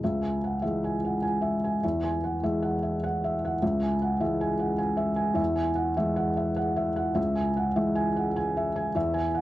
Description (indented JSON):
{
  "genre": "neoclassical minimalist piano",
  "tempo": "101 BPM",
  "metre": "3/4",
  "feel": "rubato",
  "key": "C# minor",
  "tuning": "A4 = 440 Hz",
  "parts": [
    { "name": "felt-muted upright piano", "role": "solo", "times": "0.0-9.4 s", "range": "C#2 to G#5", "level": "-25 LUFS", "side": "equal", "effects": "cassette tape" }
  ],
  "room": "moderate booth ambience, RT60 0.2 s",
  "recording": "home recording on cassette",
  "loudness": "-25 LUFS",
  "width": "side -15 dB against mid",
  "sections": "0.0-9.4 A section",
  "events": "none",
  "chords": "0.0 C#m; 1.8 Eadd9; 3.6 C#m; 5.4 Eadd9; 7.2 C#m"
}